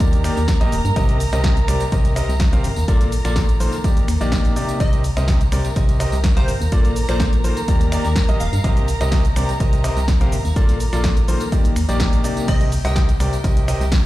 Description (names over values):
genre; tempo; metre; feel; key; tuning
piano house; 125 BPM; 4/4; straight; C dorian; A4 = 439 Hz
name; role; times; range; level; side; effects
dark studio violin section; sustained chords; 0.0-14.1 s; G4 to Bb5; -29 LUFS; right 1 dB; sidechain pumping
clear baby grand piano; riff; 0.0-13.8 s; Bb2 to F5; -24 LUFS; left 1 dB; sidechain pumping, ping-pong delay
organ-like FM bass; bass; 0.0-14.0 s; Eb1 to G2; -20 LUFS; equal; sidechain pumping
electronic kick drum; drums; 0.0-14.0 s; none; -18 LUFS; equal; none
punchy analog drum machine; drums; 0.0-14.0 s; crash cymbal, finger snaps, hi-hat, shaker, snare drum; -28 LUFS; equal; none
tambourine; percussion; 0.0-14.0 s; none; -39 LUFS; right 1 dB; none
plucky unison lead; melody; 4.8-8.7, 12.5-13.0 s; C5 to G5; -31 LUFS; equal; ping-pong delay
room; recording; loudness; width
little or no reverb; played on a big sound system in a bare room, large studio reverb; -16 LUFS; side -16 dB against mid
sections
0.0-14.1 A section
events
none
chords
0.0 Ebmaj7; 1.0 Cm7; 2.9 Bbmaj7; 3.8 Ebmaj7; 4.8 Cm7; 6.7 Bbmaj7; 7.7 Ebmaj7; 8.6 Cm7; 10.6 Bbmaj7; 11.5 Ebmaj7; 12.5 Cm7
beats
0.00 0.48 | 0.96 1.44 1.92 2.40 | 2.88 3.36 3.84 4.32 | 4.80 5.28 5.76 6.24 | 6.72 7.20 7.68 8.16 | 8.64 9.12 9.60 10.08 | 10.56 11.04 11.52 12.00 | 12.48 12.96 13.44 13.92